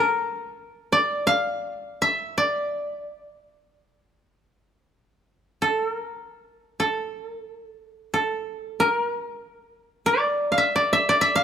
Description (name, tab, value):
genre	japanese traditional, Japanese chamber music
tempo	free time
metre	none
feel	none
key	unclear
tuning	A4 = 440 Hz
part	koto	solo	0.0-11.4 s	A4 to F5	-22 LUFS	equal	none
room	light reverb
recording	close, detailed microphones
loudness	-22 LUFS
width	side -8 dB against mid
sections	0.0-11.4 A section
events	none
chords	none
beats	free time